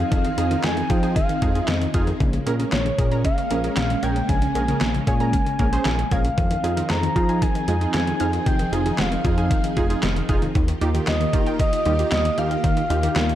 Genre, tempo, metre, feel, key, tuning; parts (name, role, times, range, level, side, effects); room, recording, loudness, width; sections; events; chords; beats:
synth-pop; 115 BPM; 4/4; straight; F minor; A4 = 440 Hz
expressive synth lead; melody; 0.0-13.4 s; Db5 to Bb5; -26 LUFS; equal; chorus, digital delay
string machine, violins; sustained chords; 0.0-13.4 s; Eb3 to Ab4; -28 LUFS; equal; ensemble chorus
wide unison pluck; arpeggios; 0.0-13.4 s; Db3 to Ab6; -30 LUFS; left 2 dB; digital delay
chorused synth bass; bass; 0.0-13.4 s; F1 to F3; -24 LUFS; equal
detuned 8-bit digital drum machine; drums; 0.1-13.4 s; handclaps, hi-hat, kick drum, snare drum; -24 LUFS; equal; overdrive
warm analog keys; accompaniment; 0.4-13.2 s; Db4 to Ab5; -29 LUFS; right 4 dB; chorus
light reverb; dark, warm production; -19 LUFS; side -12 dB against mid
0.0-13.4 A section
synth keys fill 9.5-10.6
0.0 Fm7; 2.2 Bbm7; 6.4 Fm7; 10.6 Ebadd9
| 0.12 0.64 1.16 1.68 | 2.20 2.73 3.25 3.77 | 4.29 4.81 5.33 5.86 | 6.38 6.90 7.42 7.94 | 8.46 8.99 9.51 10.03 | 10.55 11.07 11.60 12.12 | 12.64 13.16